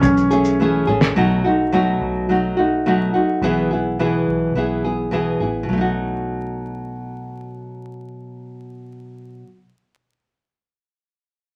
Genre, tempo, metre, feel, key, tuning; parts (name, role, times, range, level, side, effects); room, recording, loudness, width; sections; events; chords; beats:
acoustic pop; 106 BPM; 4/4; straight; B mixolydian; A4 = 440 Hz
clear upright piano; melody; 0.0-0.8 s; C#4; -19 LUFS; equal
nylon-string guitar; accompaniment; 0.0-9.5 s; B2 to G#4; -22 LUFS; equal
reed electric piano; accompaniment; 0.0-1.2 s; barely audible
vintage muted fingered electric bass; bass; 0.0-9.4 s; A1 to B1; -29 LUFS; equal
cloth-damped thuddy drum kit; drums; 0.0-1.1 s; kick drum, shaker, snare drum; -22 LUFS; equal
wet club reverb, RT60 0.7 s; vinyl crackle; -19 LUFS; mono
0.0-1.2 A section; 1.2-5.7 B section; 5.7-8.0 C section
drum fill 0.6-1.2
0.0 Amaj7/B; 1.2 B7; 3.4 E/B; 5.7 B7
0.03 0.59 | 1.16 1.72 2.29 2.85 | 3.42 3.98 4.55 5.11 | 5.68 6.25 6.82 7.38